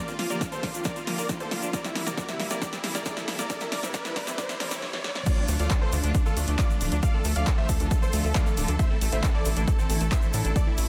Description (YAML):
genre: uplifting trance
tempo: 136 BPM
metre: 4/4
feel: straight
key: D minor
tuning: A4 = 438 Hz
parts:
  - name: big supersaw lead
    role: melody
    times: 0.0-10.9 s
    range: C4 to F5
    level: -36 LUFS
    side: equal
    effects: vintage 12-bit sampler grit, sidechain pumping, tape echo
  - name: warm grand piano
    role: second line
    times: 0.0-10.9 s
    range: D4 to F5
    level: -41 LUFS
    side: equal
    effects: sidechain pumping
  - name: clear studio string section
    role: sustained chords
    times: 0.0-10.7 s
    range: C3 to G4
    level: -38 LUFS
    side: equal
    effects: sidechain pumping
  - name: liquid acid bass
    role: arpeggios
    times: 0.0-10.9 s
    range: D3 to D4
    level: -42 LUFS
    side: equal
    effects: none
  - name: riser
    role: sound effects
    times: 0.5-5.3 s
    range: none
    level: -41 LUFS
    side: equal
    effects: none
  - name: punchy analog drum machine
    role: drums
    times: 0.1-10.9 s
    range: crash cymbal, handclaps, hi-hat, snare drum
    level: -35 LUFS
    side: equal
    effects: overdrive, small room reverb
  - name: egg shaker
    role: percussion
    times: 0.1-10.9 s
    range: none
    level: -42 LUFS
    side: equal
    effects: none
  - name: electronic kick drum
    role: drums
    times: 0.4-10.6 s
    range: none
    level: -28 LUFS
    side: equal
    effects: overdrive, small room reverb
  - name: tight sequencer bass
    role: bass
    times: 5.5-10.9 s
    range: D1 to A2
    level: -28 LUFS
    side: equal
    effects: sidechain pumping
room: light reverb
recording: dense, heavily limited modern master, high-pass filter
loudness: -26 LUFS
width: mono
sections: 0.0-5.3 A section; 5.3-10.9 B section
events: build-up 0.0-5.3; drum fill 0.0-4.8, 4.8-5.3; riser 0.5-5.3; drop 5.3-10.9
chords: 0.0 Bb; 1.7 C; 5.3 Dm; 8.8 Asus4